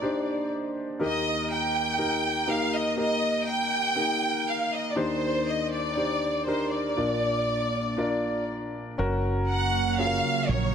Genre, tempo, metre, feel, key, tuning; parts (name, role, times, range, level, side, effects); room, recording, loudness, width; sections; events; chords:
pop; 60 BPM; 4/4; straight; Eb major; A4 = 441 Hz
warm studio violin section; melody; 0.0-10.7 s; C5 to G5; -27 LUFS; right 1 dB
warm grand piano; accompaniment; 0.0-10.7 s; Bb1 to Eb5; -28 LUFS; left 1 dB
ethereal airy pad; sustained chords; 9.5-10.7 s; Db3 to Bb3; -30 LUFS; right 7 dB; ensemble chorus, built-in reverb, phaser
woody fretless electric bass; bass; 9.0-10.7 s; Gb1 to Bb1; -27 LUFS; right 1 dB
light reverb, studio reverb; -24 LUFS; side -8 dB against mid
0.0-9.0 A section; 9.0-10.7 B section
0.0 Cmadd9/Eb; 1.0 Eb; 5.0 Cmadd9/Eb; 7.0 Bb; 9.0 Gbmaj7